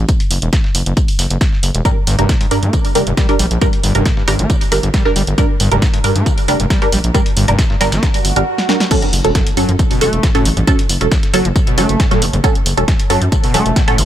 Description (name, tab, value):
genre	driving peak-time techno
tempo	136 BPM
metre	4/4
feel	straight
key	unclear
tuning	A4 = 439 Hz
part	gritty driven synth bass	bass	0.0-14.1 s	E1 to G2	-17 LUFS	equal	sidechain pumping
part	dusty soul sampler-style drum kit	drums	0.1-14.1 s	hi-hat, snare drum, tambourine	-26 LUFS	right 1 dB	high-pass filter on snare, sidechain pumping on perc, high-pass filter on perc, sidechain pumping on hats, high-pass filter on hats
part	electronic kick drum	drums	0.1-13.9 s	none	-15 LUFS	equal	none
part	punchy analog drum machine	drums	0.1-14.1 s	crash cymbal, hi-hat, snare drum	-21 LUFS	right 1 dB	none
part	overdriven acid bass	riff	1.9-14.0 s	E2 to Bb3	-20 LUFS	equal	distortion, analog chorus, sidechain pumping, digital delay
part	filtered dub chord stab	stabs	1.9-13.9 s	F#3 to Bb4	-18 LUFS	right 2 dB	phaser, analog chorus, sidechain pumping, digital delay
part	swell and impact	sound effects	8.2-10.7 s	none	-25 LUFS	right 2 dB	none
room	little or no reverb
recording	none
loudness	-12 LUFS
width	side -11 dB against mid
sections	0.0-8.9 A section; 8.9-14.1 B section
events	swell 8.2-8.9; drum fill 8.6-8.9; drop 8.9-14.1; impact 8.9-10.7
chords	0.0 N.C.; 1.9 Gm; 8.9 F#m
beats	| 0.09 0.53 0.97 1.41 | 1.85 2.29 2.73 3.17 | 3.62 4.06 4.50 4.94 | 5.38 5.82 6.26 6.70 | 7.14 7.59 8.03 8.47 | 8.91 9.35 9.79 10.23 | 10.67 11.12 11.56 12.00 | 12.44 12.88 13.32 13.76